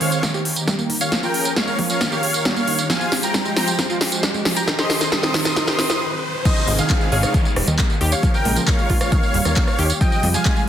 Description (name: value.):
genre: uplifting trance.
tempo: 135 BPM.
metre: 4/4.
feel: straight.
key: F minor.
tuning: A4 = 442 Hz.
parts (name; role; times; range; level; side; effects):
dense compressed supersaw; melody; 0.0-10.6 s; Ab4 to Eb6; -24 LUFS; equal; sidechain pumping, digital delay.
analog pluck; arpeggios; 0.0-10.5 s; Eb3 to Ab4; -26 LUFS; right 3 dB; chorus, sidechain pumping, digital delay.
big-room dance drum kit; drums; 0.0-10.7 s; crash cymbal, handclaps, hi-hat, rim click, snare drum, tambourine; -22 LUFS; equal; none.
riser and downlifter; sound effects; 2.2-10.0 s; none; -31 LUFS; left 1 dB; none.
electronic kick drum; drums; 0.2-10.5 s; none; -20 LUFS; equal; overdrive, high-pass filter on kick, high-pass filter on room.
bright grand piano; second line; 6.5-10.6 s; Eb5 to Ab5; -30 LUFS; equal; sidechain pumping, digital delay.
plucky analog bass; bass; 6.7-10.4 s; Eb1 to F2; -20 LUFS; equal; sidechain pumping.
room: moderate digital room reverb, RT60 1.0 s, digital ambience.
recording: dense, heavily limited modern master.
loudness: -16 LUFS.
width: side -10 dB against mid.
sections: 0.0-6.5 A section; 6.5-10.7 B section.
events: build-up 0.0-6.5; drum fill 0.0-6.0; filter sweep on synth pluck 0.0-6.5; stop 6.0-6.5; drop 6.5-10.7.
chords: 0.2 Eb; 1.1 Bbm7; 2.0 Eb; 2.9 Fmadd9; 4.7 Cm; 6.5 Ab; 7.3 Eb; 8.2 Bbm7; 9.1 Eb; 10.0 Fmadd9.